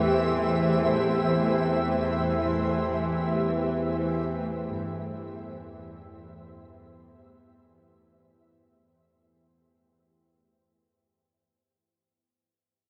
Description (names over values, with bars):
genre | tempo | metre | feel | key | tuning
dark ambient drone | free time | none | none | unclear | A4 = 440 Hz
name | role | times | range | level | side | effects
granular cloud pad | sustained chords | 0.0-9.3 s | E3 to C5 | -30 LUFS | equal | built-in reverb
gamelan-type bossed gongs | arpeggios | 0.0-12.1 s | G2 to A3 | -43 LUFS | equal | none
bowed-like drone | drone | 0.0-9.4 s | E2 to E3 | -32 LUFS | equal | built-in reverb
flickering grainy texture | texture | 0.0-9.4 s | E5 | -35 LUFS | equal | built-in reverb
room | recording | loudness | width
wet huge ambient reverb, RT60 8.4 s | in a vast, echoing space | -26 LUFS | mono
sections
0.0-9.3 A section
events
fade-out 0.0-9.3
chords
0.0 Am7/E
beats
free time